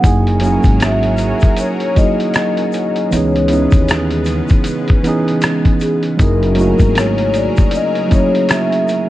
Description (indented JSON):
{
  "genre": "lo-fi hip hop",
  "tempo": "78 BPM",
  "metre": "4/4",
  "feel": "swing 60% on 16ths",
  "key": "unclear",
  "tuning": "A4 = 438 Hz",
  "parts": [
    { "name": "vibraphone with soft mallets", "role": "melody", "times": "0.0-9.1 s", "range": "G#4 to G#5", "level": "-19 LUFS", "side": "left 3 dB", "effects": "tape echo" },
    { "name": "mellow tine electric piano", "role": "accompaniment", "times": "0.0-9.1 s", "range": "E3 to G#4", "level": "-16 LUFS", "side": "right 2 dB", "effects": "none" },
    { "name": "lush unison pad", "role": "sustained chords", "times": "0.0-9.1 s", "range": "C#3 to A#4", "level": "-24 LUFS", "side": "left 1 dB", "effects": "chorus" },
    { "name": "upright bass", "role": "bass", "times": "0.0-7.5 s", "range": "F#1 to D#2", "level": "-18 LUFS", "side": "equal", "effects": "none" },
    { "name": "lo-fi sampler-style drum kit", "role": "drums", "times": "0.0-9.1 s", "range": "hi-hat, kick drum, rim click", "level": "-14 LUFS", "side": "equal", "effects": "none" },
    { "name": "tube shaker", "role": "percussion", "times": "0.0-9.1 s", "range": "none", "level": "-38 LUFS", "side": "left 8 dB", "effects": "none" }
  ],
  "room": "studio ambience",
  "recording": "cassette tape",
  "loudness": "-12 LUFS",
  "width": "side -15 dB against mid",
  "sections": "0.0-9.1 A section",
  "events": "none",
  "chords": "0.0 F#13; 3.1 C#m9; 6.2 F#13",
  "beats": "| 0.04 0.81 1.58 2.35 | 3.12 3.89 4.66 5.43 | 6.20 6.96 7.73 8.50"
}